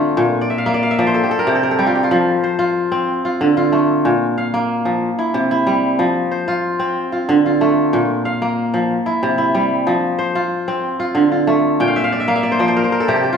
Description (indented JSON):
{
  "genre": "west african traditional",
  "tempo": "124 BPM (dotted quarters)",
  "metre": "12/8",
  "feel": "straight",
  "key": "F major",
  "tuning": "A4 = 443 Hz",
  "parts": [
    { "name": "kora", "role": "solo", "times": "0.0-13.4 s", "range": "Bb2 to G5", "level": "-14 LUFS", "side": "equal", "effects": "none" }
  ],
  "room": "wet large studio reverb, RT60 1.3 s",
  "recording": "band playing live in one room",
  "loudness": "-14 LUFS",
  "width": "side -6 dB against mid",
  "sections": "0.0-13.4 A section",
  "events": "kora fill 0.4-2.1, 11.8-13.4",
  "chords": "0.2 Bb5; 1.1 C5; 2.1 F5; 3.1 Dm; 4.1 Bb5; 5.0 C; 6.0 F5; 7.0 Dm; 7.9 Bb5; 8.9 C; 9.9 F5; 10.8 Dm; 11.8 Bb5; 12.8 C5"
}